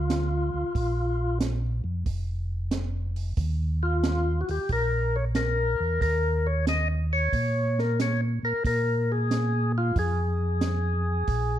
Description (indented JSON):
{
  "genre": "soul jazz organ trio",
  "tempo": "91 BPM",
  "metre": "4/4",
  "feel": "swing 68% on 8ths",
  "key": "unclear",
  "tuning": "A4 = 440 Hz",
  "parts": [
    { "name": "percussive tonewheel organ", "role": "melody", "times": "0.0-11.6 s", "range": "F4 to Eb5", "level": "-28 LUFS", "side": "left 2 dB", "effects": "slow rotary speaker" },
    { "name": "mellow tonewheel organ", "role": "bass", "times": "0.0-11.6 s", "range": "F1 to Bb2", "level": "-26 LUFS", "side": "equal", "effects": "chorus vibrato, slow rotary speaker" },
    { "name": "compact cocktail drum kit", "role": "drums", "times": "0.1-11.5 s", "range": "hi-hat, kick drum, snare drum", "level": "-31 LUFS", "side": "right 2 dB", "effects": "none" }
  ],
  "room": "light reverb",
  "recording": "dark, warm production",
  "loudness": "-24 LUFS",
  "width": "side -11 dB against mid",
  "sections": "0.0-11.6 A section",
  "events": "none",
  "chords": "0.0 Bb; 3.4 Eb5; 8.6 Bb5",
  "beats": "0.10 | 0.75 1.41 2.07 2.72 | 3.38 4.04 4.69 5.35 | 6.01 6.67 7.32 7.98 | 8.64 9.30 9.96 10.62 | 11.28"
}